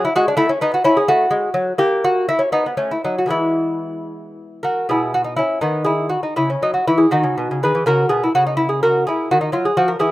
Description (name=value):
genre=classical, baroque-style dance for lute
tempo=74-86 BPM (dotted quarters)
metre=6/8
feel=rubato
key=E major, B major from 4.9 s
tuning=A4 = 437 Hz
part: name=lute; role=solo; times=0.0-10.1 s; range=B2 to B4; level=-16 LUFS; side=equal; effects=none
room=light reverb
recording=rough home demo mix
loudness=-15 LUFS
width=side -16 dB against mid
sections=0.0-4.9 A section; 4.9-10.1 A section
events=none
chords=0.4 A; 1.1 F#m; 1.8 N.C.; 2.5 B5; 3.3 E; 4.9 B; 6.4 C#madd11; 7.1 B; 7.8 C#m; 9.3 D#madd9